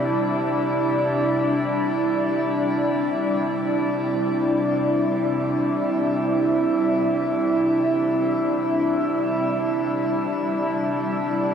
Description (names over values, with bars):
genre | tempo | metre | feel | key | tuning
ambient | free time | none | none | C major | A4 = 439 Hz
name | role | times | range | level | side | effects
warbly tape-like pad | sustained chords | 0.0-11.5 s | D4 to A5 | -21 LUFS | equal | chorus, built-in reverb
bowed-like drone | drone | 0.0-11.5 s | C3 to G3 | -27 LUFS | left 1 dB | built-in reverb
room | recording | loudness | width
wet shimmer reverb, RT60 9.5 s | none | -20 LUFS | side -7 dB against mid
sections
0.0-3.9 A section; 3.9-11.5 B section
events
none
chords
0.0 Cadd9